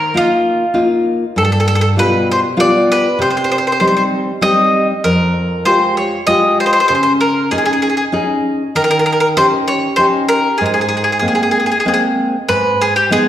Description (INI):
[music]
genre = italian folk, Italian serenade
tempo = 97 BPM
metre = 3/4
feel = straight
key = Ab major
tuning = A4 = 440 Hz
[part]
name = bowl-back mandolin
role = melody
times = 0.0-13.3 s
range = F4 to Eb5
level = -14 LUFS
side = equal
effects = none
[part]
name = nylon-string guitar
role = accompaniment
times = 0.0-13.3 s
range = F2 to Ab4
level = -15 LUFS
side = equal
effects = none
[sound]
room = wet recital hall reverb, RT60 1.6 s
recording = heard from further back in the room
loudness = -12 LUFS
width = side -11 dB against mid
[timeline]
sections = 0.0-12.5 A section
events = none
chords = 0.0 Ebsus2; 1.4 G7; 3.2 Cm; 5.0 Fmadd9; 6.9 Dbsus2; 8.7 Eb7; 10.6 Abadd9; 12.5 G#m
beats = 0.14 0.75 | 1.36 1.97 2.58 | 3.19 3.81 4.43 | 5.05 5.67 6.29 | 6.90 7.52 8.13 | 8.75 9.36 9.98 | 10.60 11.22 11.85 | 12.48 13.11